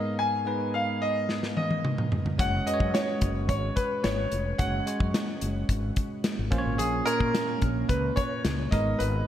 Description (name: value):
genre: 1980s-style pop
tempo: 109 BPM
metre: 4/4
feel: straight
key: F# major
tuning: A4 = 440 Hz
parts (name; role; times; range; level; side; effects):
- clear concert grand piano; melody; 0.0-9.3 s; G#4 to G#5; -29 LUFS; equal; wide subtle chorus, shimmer reverb
- barky tine electric piano; accompaniment; 0.0-9.3 s; G#2 to C#5; -31 LUFS; right 1 dB; lush chorus, shimmer reverb
- modern studio drum kit; drums; 1.3-9.1 s; hi-hat, kick drum, snare drum, toms; -29 LUFS; left 1 dB; gated reverb
- fretless electric bass; bass; 2.4-9.2 s; E#1 to A#2; -30 LUFS; left 1 dB; none
room: moderate lush hall reverb, RT60 2.0 s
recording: bright 1980s-style digital production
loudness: -25 LUFS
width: side -11 dB against mid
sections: 0.0-9.3 A section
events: drum fill 1.3-2.4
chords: 0.0 G#madd9; 2.4 F#sus2; 6.5 A#m; 8.7 G#madd9